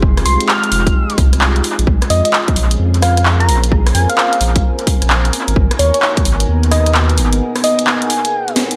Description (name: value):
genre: UK garage, two-step garage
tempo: 130 BPM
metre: 4/4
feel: swing 64% on 16ths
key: unclear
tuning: A4 = 441 Hz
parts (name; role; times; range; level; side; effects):
- soft string machine; sustained chords; 0.0-8.8 s; Cb4 to Bb4; -29 LUFS; equal; ensemble chorus, sidechain pumping
- saturated sub bass; bass; 0.0-7.4 s; F1 to F2; -16 LUFS; equal; none
- electronic kick drum; drums; 0.0-6.2 s; none; -16 LUFS; equal; overdrive
- deep dark ambient pad; texture; 0.0-8.8 s; Ab3 to Ab5; -26 LUFS; equal; chorus, built-in reverb, sidechain pumping
- house drum kit; drums; 0.2-8.8 s; handclaps, hi-hat, rim click, snare drum; -20 LUFS; equal; overdrive, tape echo
- soft struck synth lead; melody; 0.3-8.5 s; Db5 to F6; -20 LUFS; equal; chorus, vintage 12-bit sampler grit, tape echo
room: light reverb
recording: echo-heavy mix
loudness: -14 LUFS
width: mono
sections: 0.0-8.8 A section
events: drum fill 8.6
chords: 0.0 Fm9; 1.6 Bbm9; 5.3 Abm9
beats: | 0.02 0.49 0.95 1.41 | 1.87 2.33 2.79 3.25 | 3.72 4.18 4.64 5.10 | 5.56 6.02 6.49 6.95 | 7.41 7.87 8.33